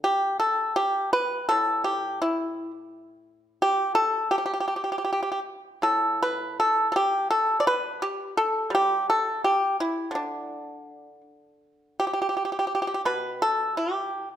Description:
chinese traditional; 78-87 BPM; 2/4; rubato; D zhi mode; A4 = 440 Hz
pipa; solo; 0.0-14.4 s; A2 to D5; -23 LUFS; equal
moderate recital hall reverb, RT60 1.6 s; -23 LUFS; side -10 dB against mid
0.0-11.6 A section; 11.6-14.4 B section
| 0.03 0.78 | 1.51 2.23 | 2.92 3.62 | 4.33 5.07 | 5.84 6.59 | 7.30 8.01 | 8.72 9.42 | 10.12 10.85 | 11.61 12.34 | 13.07 13.79

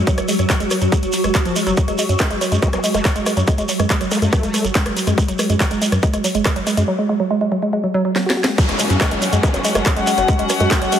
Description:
psychedelic trance; 141 BPM; 4/4; straight; F# minor; A4 = 445 Hz
swarming drone; sustained chords; 0.0-11.0 s; F#3 to F#4; -25 LUFS; equal; built-in reverb, sidechain pumping
round analog bass; bass; 0.0-10.9 s; F#1 to F#2; -22 LUFS; equal
woody wave-folded pluck; riff; 0.1-11.0 s; E#3 to F#4; -20 LUFS; right 1 dB; chorus, auto-pan, sidechain pumping, digital delay
drum and bass drum kit; drums; 0.1-11.0 s; handclaps, hi-hat, rim click, snare drum; -23 LUFS; equal; overdrive, small room ambience
electronic kick drum; drums; 0.1-10.8 s; -17 LUFS; equal; overdrive, small room ambience
shekere; percussion; 0.1-11.0 s; -27 LUFS; right 3 dB
vowel-sweep wobble bass; second line; 2.6-4.6, 9.4-10.7 s; A3 to B3; -28 LUFS; left 2 dB; chorus, sidechain pumping, high-pass filter, dub echo
downlifter; sound effects; 8.6-11.0 s; -25 LUFS; equal
warm studio string section; texture; 8.6-11.0 s; F#3 to F#5; -21 LUFS; left 4 dB; sidechain pumping
light reverb; heavily compressed radio sound, multiband compression; -15 LUFS; side -9 dB against mid
0.0-8.6 A section; 8.6-11.0 B section
drum fill 8.2-8.6; drop 8.6-11.0
0.0 F#sus2; 8.6 F#5
| 0.07 0.50 0.92 1.35 | 1.77 2.20 2.62 3.05 | 3.48 3.90 4.33 4.75 | 5.18 5.60 6.03 6.46 | 6.88 7.31 7.73 8.16 | 8.58 9.01 9.43 9.86 | 10.28 10.71

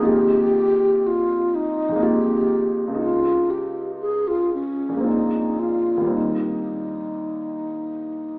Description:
classical, impressionist duo for alto flute and grand piano; 54-62 BPM; 3/4; rubato; Eb mixolydian; A4 = 440 Hz
mellow wooden-headed alto flute; melody; 0.0-8.4 s; Db4 to Ab4; -20 LUFS; equal
warm concert grand piano; accompaniment; 0.0-8.4 s; Bb1 to F4; -24 LUFS; equal
wet recital hall reverb, RT60 1.9 s; recorded in a church or concert hall, AM radio sound; -19 LUFS; side -28 dB against mid
0.0-8.4 A section
0.1 Fm11; 3.0 Dbadd9; 5.1 Bb9sus4; 6.1 Eb6
| 0.07 1.05 2.05 | 3.03 4.03 5.06 | 6.15 7.24 8.31

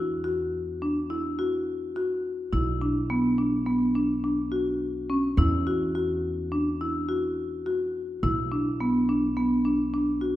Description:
contemporary instrumental, chamber music in an uneven meter; 105 BPM; 5/4; straight; B minor; A4 = 440 Hz
marimba with medium mallets; arpeggios; 0.0-10.4 s; B3 to F#4; -25 LUFS; equal
upright bass; bass; 0.0-10.4 s; B1 to E2; -32 LUFS; equal
wet recital hall reverb, RT60 1.6 s; minimal, uncompressed stereo recording; -24 LUFS; side -14 dB against mid
0.0-10.4 A section
0.0 Esus2; 2.5 Bm; 5.4 Esus2; 8.2 Bm
0.25 0.82 1.39 1.96 | 2.53 3.10 3.67 4.24 4.81 | 5.38 5.95 6.52 7.09 7.66 | 8.23 8.80 9.37 9.94

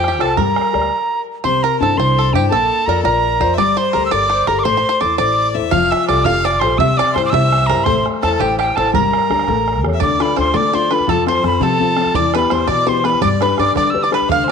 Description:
celtic folk, Celtic jig; 112 BPM (dotted quarters); 6/8; straight; D dorian from 10.0 s; A4 = 440 Hz
bright wooden whistle; melody; 0.0-14.5 s; G5 to F6; -17 LUFS; right 2 dB
bluegrass banjo; second line; 0.0-14.5 s; G4 to F5; -22 LUFS; right 14 dB
clear fiddle; second line; 0.0-14.5 s; G4 to F5; -22 LUFS; left 10 dB; tape echo
dark upright piano; accompaniment; 0.0-14.5 s; B2 to D5; -20 LUFS; left 10 dB
upright bass; bass; 0.0-14.5 s; F1 to G3; -22 LUFS; right 2 dB
bodhran; percussion; 0.0-0.9, 5.7-14.5 s; -23 LUFS; right 9 dB
light reverb, small room ambience; 1960s-style stereo with parts hard left and right; -13 LUFS; side -6 dB against mid
0.0-1.4 A section; 1.4-10.0 A section; 10.0-14.5 B section
stop 0.9-1.4
0.4 Gm; 1.4 Cadd9; 2.5 Bb; 3.6 Gmadd9; 4.7 Am; 5.7 Fadd9; 6.8 C; 7.9 Am; 8.9 Gm; 9.5 A7; 10.0 Dm; 11.1 F; 12.1 Em; 13.2 G
| 0.37 0.91 | 1.44 1.98 | 2.51 3.05 | 3.58 4.12 | 4.65 5.19 | 5.72 6.26 | 6.79 7.33 | 7.86 8.40 | 8.93 9.47 | 10.01 10.54 | 11.08 11.61 | 12.15 12.68 | 13.22 13.75 | 14.29

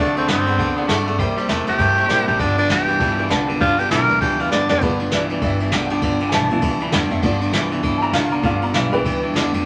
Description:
rockabilly; 199 BPM; 4/4; swing 60% on 8ths; G mixolydian; A4 = 440 Hz
growling tenor saxophone; melody; 0.0-4.8 s; C4 to Bb4; -21 LUFS; equal
honky-tonk upright piano; accompaniment; 0.0-9.2 s; A3 to B5; -28 LUFS; equal
picked steel-string acoustic guitar; accompaniment; 0.0-9.7 s; G2 to A4; -31 LUFS; equal
twangy electric guitar; riff; 0.0-9.6 s; G2 to B3; -24 LUFS; equal
upright bass; bass; 0.0-9.6 s; G1 to A2; -28 LUFS; equal
jazz brush drum kit; drums; 0.2-9.6 s; kick drum, ride cymbal, snare drum; -26 LUFS; equal
moderate studio reverb, RT60 0.9 s; -19 LUFS; mono
0.0-4.8 A section; 4.8-9.7 B section
drum fill 4.5-4.8; honky-tonk piano solo 4.8-9.7
0.0 D7; 1.2 C7; 2.4 G7
0.29 0.59 0.89 | 1.20 1.50 1.80 2.10 | 2.40 2.71 3.01 3.31 | 3.61 3.91 4.21 4.52 | 4.82 5.12 5.42 5.72 | 6.03 6.33 6.63 6.93 | 7.23 7.54 7.84 8.14 | 8.44 8.74 9.04 9.35 | 9.65

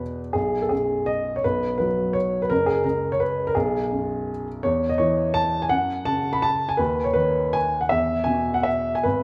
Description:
classical, piano waltz; 148-180 BPM; 3/4; rubato; E major; A4 = 438 Hz
warm upright piano; solo; 0.0-9.2 s; F#1 to B5; -23 LUFS; equal
moderate recital hall reverb, RT60 1.5 s; -23 LUFS; mono
0.0-9.2 A section
0.4 B5; 2.5 F#5; 3.6 B5; 4.7 N.C.; 5.7 F#5; 6.8 N.C.; 7.9 E5
0.01 | 0.36 0.72 1.08 | 1.44 1.79 2.15 | 2.50 2.84 3.20 | 3.56 3.92 4.29 | 4.65 5.00 5.37 | 5.72 6.08 6.45 | 6.81 7.17 7.55 | 7.92 8.28 8.67 | 9.06

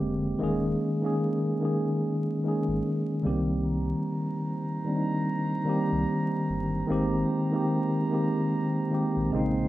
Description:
hip hop; 74 BPM; 4/4; swing 58% on 16ths; A4 = 440 Hz
mellow tine electric piano; accompaniment; 0.0-9.7 s; Db3 to Ab4; -25 LUFS; equal; medium stereo tremolo, cassette tape
sub bass with octave; bass; 0.0-9.7 s; Eb1 to C2; -34 LUFS; equal
dark brass ensemble; sustained chords; 3.6-9.7 s; Eb4 to C6; -36 LUFS; right 2 dB
wet small room reverb, RT60 0.5 s; rough home demo mix, vinyl crackle; -25 LUFS; side -15 dB against mid
0.0-9.7 A section
0.4 Eb7sus4; 3.2 Cm7; 6.9 Abmaj9
| 0.41 1.22 2.03 2.84 | 3.65 4.46 5.27 6.08 | 6.89 7.71 8.52 9.33

